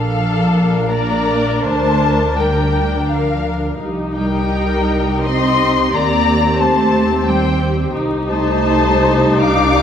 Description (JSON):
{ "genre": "classical, slow romantic movement for string orchestra", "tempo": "71-90 BPM", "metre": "3/4", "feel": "rubato", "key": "unclear", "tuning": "A4 = 440 Hz", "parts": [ { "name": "muted studio violin section", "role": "melody", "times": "0.0-9.8 s", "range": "F5 to D6", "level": "-20 LUFS", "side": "left 5 dB", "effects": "none" }, { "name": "muted studio violin section", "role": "second line", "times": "0.0-9.8 s", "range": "A4 to F5", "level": "-22 LUFS", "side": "left 3 dB", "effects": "none" }, { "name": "muted studio viola section", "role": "accompaniment", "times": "0.0-9.8 s", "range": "C4 to Bb4", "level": "-19 LUFS", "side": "equal", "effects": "none" }, { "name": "muted studio cello section", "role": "bass", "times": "0.0-9.8 s", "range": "F3 to D4", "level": "-20 LUFS", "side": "right 2 dB", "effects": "none" }, { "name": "muted studio double bass section", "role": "bass", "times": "0.0-9.8 s", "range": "Bb1 to Eb2", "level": "-20 LUFS", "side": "right 1 dB", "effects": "none" } ], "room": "moderate scoring stage reverb, RT60 1.9 s", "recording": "vinyl crackle", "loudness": "-13 LUFS", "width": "side -8 dB against mid", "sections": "0.0-9.8 A section", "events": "none", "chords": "0.0 Bb; 1.7 Bb/D; 3.8 Cm; 5.9 Cm/Eb; 7.9 Am7b5/C" }